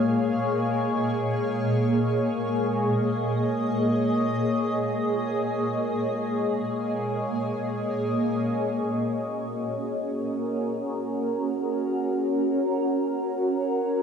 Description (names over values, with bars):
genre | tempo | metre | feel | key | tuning
ambient | free time | none | none | unclear | A4 = 440 Hz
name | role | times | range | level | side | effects
shimmering ambient pad | sustained chords | 0.0-14.0 s | A#2 to E#5 | -24 LUFS | equal | chorus, built-in reverb, phaser
organ-like drone | drone | 0.0-8.3 s | G#3 to G#4 | -35 LUFS | equal | ensemble chorus, built-in reverb
room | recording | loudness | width
wet lush hall reverb, RT60 2.8 s | dreamy mix soaked in reverb, cassette tape | -24 LUFS | side -7 dB against mid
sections
0.0-8.2 A section; 8.2-14.0 B section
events
filter sweep on ambient pad 8.2-14.0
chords
0.0 A#m7; 8.2 F#